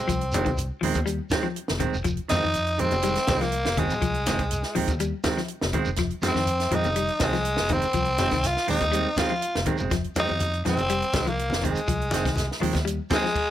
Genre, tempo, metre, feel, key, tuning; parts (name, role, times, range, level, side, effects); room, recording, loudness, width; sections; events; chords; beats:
afrobeat; 122 BPM; 4/4; straight; F minor; A4 = 440 Hz
raspy tenor saxophone; melody; 0.0-13.5 s; Ab3 to F4; -26 LUFS; equal
clean electric guitar; stabs; 0.0-13.3 s; Eb3 to C4; -30 LUFS; right 7 dB
clean electric guitar; arpeggios; 0.1-13.4 s; Eb3 to G3; -31 LUFS; left 6 dB
fingered electric bass; bass; 0.1-13.0 s; F1 to F2; -30 LUFS; equal
compact cocktail drum kit; drums; 0.1-13.5 s; crash cymbal, hi-hat, kick drum, snare drum; -30 LUFS; right 1 dB
shekere; percussion; 0.1-13.4 s; -35 LUFS; right 1 dB
congas; percussion; 0.3-13.2 s; -31 LUFS; left 3 dB
overdriven tine electric piano; second line; 13.1-13.5 s; Ab4; -28 LUFS; left 4 dB; analog delay
light reverb; -22 LUFS; side -12 dB against mid
0.0-13.5 A section
0.0 Fm7
| 0.09 0.58 1.07 1.56 | 2.06 2.55 3.04 3.53 | 4.02 4.51 5.00 5.50 | 5.99 6.48 6.97 7.46 | 7.95 8.44 8.94 9.43 | 9.92 10.41 10.90 11.39 | 11.88 12.37 12.87 13.36